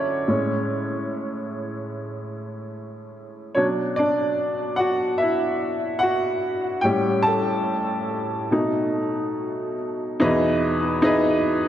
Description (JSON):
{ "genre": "pop", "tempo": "72 BPM", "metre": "4/4", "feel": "straight", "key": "unclear", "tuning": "A4 = 440 Hz", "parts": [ { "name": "clear upright piano", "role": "solo", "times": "0.0-11.7 s", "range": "E2 to A5", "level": "-21 LUFS", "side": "equal", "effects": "tape echo" } ], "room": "wet concert hall reverb, RT60 2.3 s", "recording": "none", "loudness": "-21 LUFS", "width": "side -11 dB against mid", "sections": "0.0-10.2 A section; 10.2-11.7 B section", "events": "upright piano solo 0.0-10.2", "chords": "0.3 Amaj7; 3.6 Bm; 6.9 A7; 8.5 B7; 10.2 Emaj7" }